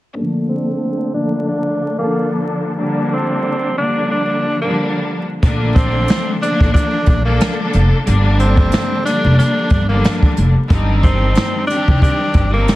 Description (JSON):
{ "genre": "hip hop, boom-bap hip-hop", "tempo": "91 BPM", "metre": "4/4", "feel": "swing 55% on 16ths", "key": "Bb major", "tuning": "A4 = 441 Hz", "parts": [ { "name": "clear studio string section", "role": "accompaniment", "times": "0.2-12.8 s", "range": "D3 to A4", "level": "-19 LUFS", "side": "left 1 dB", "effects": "cassette tape, high-pass filter, low-pass filter" }, { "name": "clear tenor saxophone", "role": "melody", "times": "0.5-12.8 s", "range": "Bb3 to D4", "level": "-20 LUFS", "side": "equal", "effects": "high-pass filter, low-pass filter" }, { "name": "upright bass", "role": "bass", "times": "5.4-12.6 s", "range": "F1 to Bb1", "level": "-15 LUFS", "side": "equal", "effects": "none" }, { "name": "jazz brush drum kit", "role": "drums", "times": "5.4-12.8 s", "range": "hi-hat, kick drum, snare drum", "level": "-15 LUFS", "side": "equal", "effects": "none" } ], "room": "studio ambience", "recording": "dense, heavily limited modern master, vinyl crackle", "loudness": "-13 LUFS", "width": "side -17 dB against mid", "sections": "0.2-5.4 A section; 5.4-12.8 B section", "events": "filter sweep 0.2-5.4", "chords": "0.2 Bbmaj7; 2.8 Gm7; 5.4 Bbmaj7; 8.1 Gm7; 10.7 Cmadd9" }